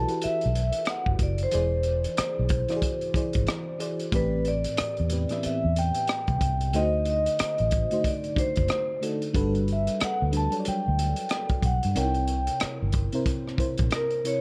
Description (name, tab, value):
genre	R&B, neo-soul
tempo	92 BPM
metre	4/4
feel	swing 61% on 16ths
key	E minor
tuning	A4 = 440 Hz
part	vibraphone with medium mallets	melody	0.0-14.4 s	Bb4 to A5	-31 LUFS	equal	none
part	FM electric piano with soft pad layer	accompaniment	0.0-14.4 s	A2 to E5	-33 LUFS	equal	chorus, tremolo
part	vintage muted fingered electric bass	bass	0.0-13.9 s	E1 to G2	-29 LUFS	equal	none
part	crunchy breakbeat drum kit	drums	0.1-14.4 s	hi-hat, kick drum, rim click	-32 LUFS	equal	none
room	light reverb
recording	dark, warm production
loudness	-26 LUFS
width	mono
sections	0.0-14.4 A section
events	none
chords	0.0 Em11; 1.5 E7b13; 4.1 Am11; 6.7 D7b9; 9.3 Gmaj7; 12.0 C7b9